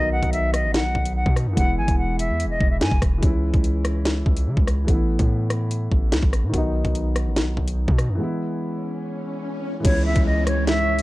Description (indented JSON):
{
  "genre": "hip hop, drill",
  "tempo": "145 BPM",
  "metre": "4/4",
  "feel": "half-time",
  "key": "C# minor",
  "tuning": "A4 = 440 Hz",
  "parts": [
    { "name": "silver concert flute", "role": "melody", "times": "0.0-3.0, 9.8-11.0 s", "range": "C#5 to G#5", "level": "-25 LUFS", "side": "equal", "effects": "low-pass filter" },
    { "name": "dark grand piano", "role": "accompaniment", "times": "0.0-11.0 s", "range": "D#3 to E4", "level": "-27 LUFS", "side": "equal", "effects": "low-pass filter" },
    { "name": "hard-hitting 808-style bass", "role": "bass", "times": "0.0-11.0 s", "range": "E1 to C#3", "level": "-23 LUFS", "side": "equal", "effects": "none" },
    { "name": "drill drum kit", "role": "drums", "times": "0.2-11.0 s", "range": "crash cymbal, hi-hat, kick drum, rim click, snare drum", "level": "-21 LUFS", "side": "equal", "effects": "vintage 12-bit sampler grit" },
    { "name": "swell and downlifter", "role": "sound effects", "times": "8.7-11.0 s", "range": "none", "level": "-33 LUFS", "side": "equal", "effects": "none" },
    { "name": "deep dark ambient pad", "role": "sustained chords", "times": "10.4-11.0 s", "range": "G#3 to C#5", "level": "-29 LUFS", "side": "right 2 dB", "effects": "chorus, built-in reverb" }
  ],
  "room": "little or no reverb",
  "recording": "dark, warm production",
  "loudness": "-19 LUFS",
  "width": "side -18 dB against mid",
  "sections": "0.0-9.8 A section; 9.8-11.0 B section",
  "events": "break 8.2-9.8; swell 8.7-9.8",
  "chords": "0.0 B; 1.6 E; 3.2 C#m; 4.9 Asus2; 6.5 B; 8.2 E; 9.8 C#m",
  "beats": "0.33 0.74 1.16 | 1.57 1.99 2.40 2.81 | 3.23 3.64 4.05 4.47 | 4.88 5.29 5.71 6.12 | 6.54 6.95 7.36 7.78 | 8.19 8.61 9.02 9.43 | 9.85 10.26 10.67"
}